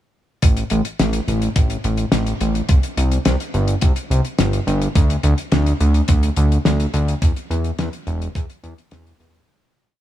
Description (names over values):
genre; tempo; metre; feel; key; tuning
synthwave; 106 BPM; 4/4; straight; unclear; A4 = 440 Hz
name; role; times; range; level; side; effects
fat analog bass; bass; 0.4-9.4 s; E1 to E2; -18 LUFS; equal; sidechain pumping
damped 70s drum kit; drums; 0.4-9.5 s; hi-hat, snare drum; -24 LUFS; left 2 dB; none
electronic kick drum; drums; 0.4-8.5 s; none; -16 LUFS; equal; none
room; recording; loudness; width
little or no reverb; none; -16 LUFS; side -12 dB against mid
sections
0.4-9.5 verse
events
fade-out 6.5-9.5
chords
none